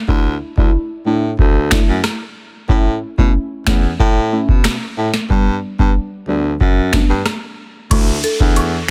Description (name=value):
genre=dancehall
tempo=92 BPM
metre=4/4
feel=straight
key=D major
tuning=A4 = 440 Hz
part: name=deep mellow chord stab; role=accompaniment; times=0.1-8.6 s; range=G3 to E4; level=-24 LUFS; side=equal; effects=chorus
part: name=mellow baritone saxophone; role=bass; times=0.1-8.8 s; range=D2 to B2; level=-21 LUFS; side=equal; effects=none
part: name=booming analog drum machine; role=drums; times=0.1-8.7 s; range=crash cymbal, finger snaps, hi-hat, kick drum, rim click, snare drum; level=-17 LUFS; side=equal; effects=overdrive
part: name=woodblock and cabasa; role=percussion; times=7.9-8.7 s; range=none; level=-28 LUFS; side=equal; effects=none
part: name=downlifter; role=sound effects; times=7.9-8.9 s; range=none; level=-28 LUFS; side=equal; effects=none
part: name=marimba with medium mallets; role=melody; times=8.2-8.3 s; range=A4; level=-24 LUFS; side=equal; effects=delay
room=digital ambience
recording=dense, heavily limited modern master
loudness=-16 LUFS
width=mono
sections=0.0-7.9 A section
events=none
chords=0.0 Dsus2; 2.7 A; 5.3 G; 7.9 Dsus2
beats=| 0.08 0.74 1.39 2.04 | 2.69 3.35 4.00 4.65 | 5.30 5.95 6.61 7.26 | 7.91 8.56